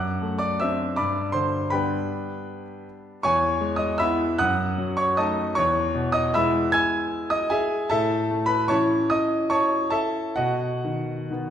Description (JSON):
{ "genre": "classical, piano waltz", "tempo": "129-170 BPM", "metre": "3/4", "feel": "rubato", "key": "E major from 3.2 s", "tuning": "A4 = 441 Hz", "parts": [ { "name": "clear concert grand piano", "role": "solo", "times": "0.0-11.5 s", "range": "E2 to G#6", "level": "-21 LUFS", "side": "equal", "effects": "none" } ], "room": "wet recital hall reverb, RT60 1.5 s", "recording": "heard from further back in the room", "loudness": "-21 LUFS", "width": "side -9 dB against mid", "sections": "0.0-11.5 A section", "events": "none", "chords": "0.0 D7/F#; 1.0 G; 3.2 E; 4.4 D#dim/F#; 5.6 E; 7.9 A; 10.4 B", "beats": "0.21 0.60 | 0.97 1.33 1.71 | 2.08 2.46 2.85 | 3.23 3.61 4.00 | 4.39 4.77 5.17 | 5.55 5.93 6.34 | 6.73 7.12 7.52 | 7.91 8.29 8.70 | 9.11 9.50 9.93 | 10.37 10.83 11.29" }